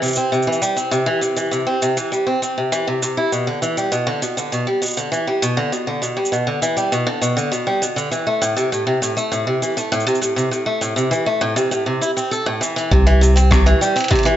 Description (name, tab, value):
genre	folktronica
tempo	100 BPM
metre	4/4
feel	straight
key	C major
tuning	A4 = 437 Hz
part	picked swing-style acoustic guitar	arpeggios	0.0-14.4 s	A2 to A4	-18 LUFS	equal	low-pass filter, digital delay
part	lo-fi sampler-style drum kit	drums	0.0-14.4 s	cabasa, hi-hat, rim click	-25 LUFS	right 1 dB	overdrive
part	warm sub bass	bass	12.9-13.7 s	C2	-12 LUFS	equal	none
part	electronic kick drum	drums	12.9-14.2 s	none	-19 LUFS	equal	overdrive
room	light reverb, digital ambience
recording	nothing above 7.8 kHz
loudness	-16 LUFS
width	side -11 dB against mid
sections	0.0-12.9 A section; 12.9-14.4 B section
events	none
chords	0.0 C; 3.3 Em7 (rootless); 8.1 Am; 12.9 C